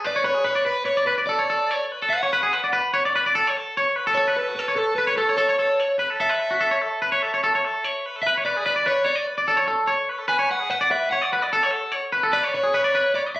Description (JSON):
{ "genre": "rock", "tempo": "147 BPM", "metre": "5/4", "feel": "straight", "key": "unclear", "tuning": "A4 = 440 Hz", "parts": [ { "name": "twangy electric guitar", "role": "arpeggios", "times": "0.0-13.4 s", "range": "F#4 to D5", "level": "-21 LUFS", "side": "equal", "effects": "none" }, { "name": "overdriven semi-hollow guitar", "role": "melody", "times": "0.1-13.4 s", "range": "A4 to G#5", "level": "-24 LUFS", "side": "equal", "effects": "spring reverb, tape echo" } ], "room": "moderate small room reverb, RT60 0.5 s", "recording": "recorded on a phone in the room, club reverb, compression", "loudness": "-19 LUFS", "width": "side -17 dB against mid", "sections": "0.0-13.4 A section", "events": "none", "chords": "0.0 Bm9; 4.1 A; 8.2 Bm9" }